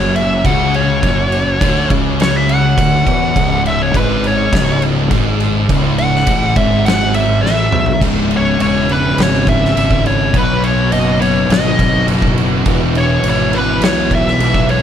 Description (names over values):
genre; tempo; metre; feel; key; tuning
stoner and doom metal; 103 BPM; 4/4; straight; C# minor; A4 = 440 Hz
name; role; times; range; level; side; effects
fuzz lead guitar; melody; 0.0-14.8 s; B4 to F#5; -17 LUFS; left 1 dB; wah, distortion, digital delay
tonewheel organ; sustained chords; 0.0-14.8 s; C#3 to C#5; -28 LUFS; equal; none
fuzz guitar; riff; 0.0-14.8 s; C#2 to B4; -24 LUFS; equal; none
thick fuzz guitar; riff; 0.0-14.8 s; C#2 to B3; -18 LUFS; left 8 dB; distortion
thick fuzz guitar; riff; 0.0-14.8 s; C#2 to B3; -20 LUFS; right 8 dB; distortion
fuzz fingered electric bass; bass; 0.0-14.8 s; C#1 to E2; -20 LUFS; equal; overdrive
oversized low-tuned drum kit; drums; 0.2-14.8 s; crash cymbal, kick drum, snare drum, toms; -18 LUFS; right 1 dB; none
room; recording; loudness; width
studio reverb; none; -11 LUFS; side -9 dB against mid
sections
0.0-8.0 A section; 8.0-14.8 B section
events
lead electric guitar solo 0.0-8.0; drum fill 7.4-8.0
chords
0.0 F#5; 3.4 C#m; 10.3 B; 12.7 E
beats
0.45 | 1.03 1.62 2.20 2.78 | 3.36 3.94 4.52 5.11 | 5.69 6.27 6.85 7.43 | 8.01 8.60 9.18 9.76 | 10.34 10.92 11.50 12.09 | 12.67 13.25 13.83 14.41